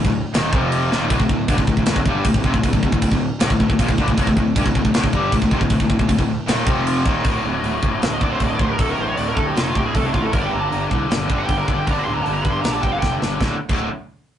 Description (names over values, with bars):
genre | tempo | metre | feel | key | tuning
heavy metal | 156 BPM | 4/4 | straight | D phrygian | A4 = 440 Hz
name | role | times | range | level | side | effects
distorted electric guitar | riff | 0.0-7.3 s | D2 to G3 | -27 LUFS | equal | none
scooped high-gain guitar | riff | 0.0-13.9 s | D2 to G3 | -26 LUFS | right 4 dB | distortion
tight distorted guitar | riff | 0.0-13.9 s | D2 to G3 | -22 LUFS | left 3 dB | distortion
fuzz picked electric bass | bass | 0.0-13.9 s | D1 to G2 | -26 LUFS | equal | overdrive
tight metal drum kit | drums | 0.0-13.8 s | crash cymbal, hi-hat, kick drum, snare drum | -21 LUFS | equal | none
high-gain lead guitar | melody | 8.1-13.1 s | D4 to C6 | -24 LUFS | right 3 dB | distortion
room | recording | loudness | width
moderate small room reverb, RT60 0.5 s | rough rehearsal-room recording, nothing above 10.9 kHz | -16 LUFS | side -10 dB against mid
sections
0.0-7.3 A section; 7.3-13.4 B section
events
drum fill 0.9, 13.0-13.4; lead electric guitar solo 7.3-13.4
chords
0.0 D5; 0.5 F5; 0.9 Dm; 6.7 F5; 7.1 Eb5; 7.3 D5; 10.3 Gm; 13.4 D5